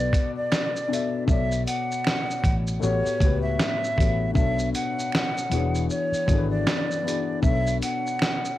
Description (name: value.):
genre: lo-fi hip hop.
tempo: 78 BPM.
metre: 4/4.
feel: swing 60% on 16ths.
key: B minor.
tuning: A4 = 443 Hz.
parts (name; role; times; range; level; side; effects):
breathy hollow jazz flute; melody; 0.0-8.6 s; C#5 to F#5; -28 LUFS; right 1 dB; cassette tape.
dark upright piano; accompaniment; 0.0-8.6 s; A2 to E5; -28 LUFS; left 6 dB; cassette tape.
vintage muted fingered electric bass; bass; 0.0-7.8 s; E1 to C#2; -26 LUFS; equal; none.
dusty soul sampler-style drum kit; drums; 0.1-8.6 s; hi-hat, kick drum, shaker, snare drum; -25 LUFS; equal; none.
finger snap; percussion; 0.5-8.4 s; none; -37 LUFS; right 14 dB; none.
room: light reverb.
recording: home recording on cassette, vinyl crackle.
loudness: -22 LUFS.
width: side -14 dB against mid.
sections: 0.0-1.3 A section; 1.3-8.6 B section.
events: none.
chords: 0.0 Bm7; 2.8 A13; 4.4 Bm7; 5.5 E13; 7.4 Bm7.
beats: 0.51 | 1.27 2.04 2.81 3.58 | 4.35 5.12 5.89 6.66 | 7.43 8.20.